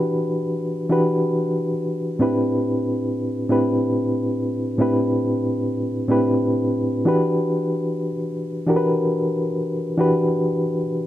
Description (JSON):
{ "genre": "soul", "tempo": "93 BPM", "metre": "4/4", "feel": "swing 54% on 16ths", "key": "A dorian", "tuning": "A4 = 440 Hz", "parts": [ { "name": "reed electric piano", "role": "solo", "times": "0.0-11.1 s", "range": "A2 to B4", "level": "-19 LUFS", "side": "equal", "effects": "fast tremolo" } ], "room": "light reverb", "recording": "none", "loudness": "-19 LUFS", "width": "side -13 dB against mid", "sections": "0.0-11.1 A section", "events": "none", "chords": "0.0 Em9; 2.2 Am11; 7.1 Em9", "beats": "0.27 0.92 1.56 | 2.21 2.86 3.51 4.15 | 4.80 5.45 6.10 6.75 | 7.39 8.04 8.69 9.34 | 9.99 10.63" }